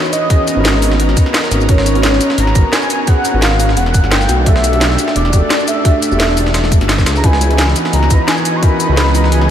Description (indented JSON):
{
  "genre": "liquid drum and bass",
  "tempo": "173 BPM",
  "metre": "4/4",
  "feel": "swing 54% on 16ths",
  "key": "unclear",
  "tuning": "A4 = 440 Hz",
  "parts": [
    { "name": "warm velvety synth lead", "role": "melody", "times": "0.0-9.5 s", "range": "C#5 to C#6", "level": "-18 LUFS", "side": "equal", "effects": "chorus, tape echo" },
    { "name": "felt-muted upright piano", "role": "accompaniment", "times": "0.0-9.5 s", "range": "B3 to B4", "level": "-20 LUFS", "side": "equal", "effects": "tape echo" },
    { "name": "airy breathy pad", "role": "sustained chords", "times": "0.0-9.5 s", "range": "E3 to D#5", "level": "-21 LUFS", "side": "equal", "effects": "chorus, sidechain pumping" },
    { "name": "breakbeat sampler-style drum kit", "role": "drums", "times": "0.1-9.4 s", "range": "hi-hat, snare drum", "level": "-22 LUFS", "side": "left 1 dB", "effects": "high-pass filter on hats, high-pass filter on snare" },
    { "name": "garage drum kit", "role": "drums", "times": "0.1-9.5 s", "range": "hi-hat, shaker, snare drum", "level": "-18 LUFS", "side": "equal", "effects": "none" },
    { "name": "electronic kick drum", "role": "drums", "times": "0.3-8.7 s", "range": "none", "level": "-12 LUFS", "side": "equal", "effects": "none" },
    { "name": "dark detuned saw bass", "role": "bass", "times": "0.6-9.5 s", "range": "E1 to C#2", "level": "-14 LUFS", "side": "equal", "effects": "none" }
  ],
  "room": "moderate huge ambient reverb, RT60 8.0 s",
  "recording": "dreamy mix soaked in reverb",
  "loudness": "-10 LUFS",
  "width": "side -10 dB against mid",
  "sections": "0.0-9.5 A section",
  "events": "none",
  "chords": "0.1 G#m11; 3.8 Em11; 7.2 C#m11",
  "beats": "| 0.30 0.65 1.00 1.34 | 1.69 2.04 2.38 2.73 | 3.08 3.42 3.77 4.12 | 4.46 4.81 5.16 5.50 | 5.85 6.20 6.55 6.89 | 7.24 7.59 7.93 8.28 | 8.63 8.97 9.32"
}